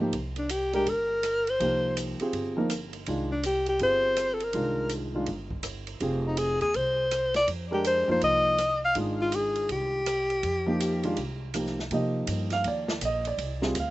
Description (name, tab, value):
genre	modal jazz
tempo	163 BPM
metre	4/4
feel	swing 64% on 8ths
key	C minor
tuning	A4 = 439 Hz
part	warm baby grand piano	accompaniment	0.0-13.9 s	Eb3 to F5	-30 LUFS	right 1 dB	none
part	upright bass	bass	0.0-13.9 s	F1 to C3	-35 LUFS	equal	none
part	open jazz drum kit	drums	0.1-13.9 s	hi-hat, kick drum, ride cymbal, rim click, snare drum	-38 LUFS	right 3 dB	none
part	breathy alto saxophone	melody	0.4-11.5 s	D4 to F5	-25 LUFS	left 1 dB	none
room	little or no reverb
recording	recorded outdoors, with no room sound, nothing above 8.0 kHz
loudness	-25 LUFS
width	side -17 dB against mid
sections	0.0-11.9 A section; 11.9-13.9 B section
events	none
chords	0.1 Cm9; 6.0 Fm9; 11.9 Cm9